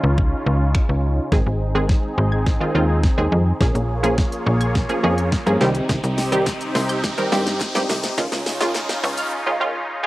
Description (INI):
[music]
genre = dance-pop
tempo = 105 BPM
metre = 4/4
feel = straight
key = Ab major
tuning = A4 = 440 Hz
[part]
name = wide unison pluck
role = accompaniment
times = 0.0-10.1 s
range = Eb3 to Bb4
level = -22 LUFS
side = right 1 dB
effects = sidechain pumping, cassette tape
[part]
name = filtered supersaw swell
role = sustained chords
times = 0.0-10.1 s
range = C3 to Db5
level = -25 LUFS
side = equal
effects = sidechain pumping, cassette tape
[part]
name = slap-like FM bass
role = bass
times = 0.0-9.2 s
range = Ab1 to G2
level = -20 LUFS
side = equal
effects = sidechain pumping
[part]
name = pop drum kit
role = drums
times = 0.2-9.3 s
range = finger snaps, hi-hat, kick drum, shaker, snare drum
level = -21 LUFS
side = equal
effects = cassette tape
[part]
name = wide unison pluck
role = arpeggios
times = 1.3-10.1 s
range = Eb3 to Ab6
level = -31 LUFS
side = left 1 dB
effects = none
[part]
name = riser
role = sound effects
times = 3.5-9.3 s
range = none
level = -33 LUFS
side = left 1 dB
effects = none
[part]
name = group handclap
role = percussion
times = 6.5-8.9 s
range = none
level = -35 LUFS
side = left 3 dB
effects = none
[sound]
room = light reverb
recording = home recording on cassette, high-pass filter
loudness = -17 LUFS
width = side -17 dB against mid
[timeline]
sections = 0.0-1.3 A section; 1.3-10.1 B section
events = build-up 1.3-10.1; drum fill 1.3-9.3; filter sweep 1.3-10.1; riser 3.5-10.1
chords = 0.0 Dbadd9; 1.3 Ab; 3.6 Bbm7; 5.6 Cm; 8.2 Dbadd9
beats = 0.18 0.75 | 1.32 1.89 2.46 3.04 | 3.61 4.18 4.75 5.32 | 5.89 6.46 7.04 7.61 | 8.18 8.75 9.32 9.89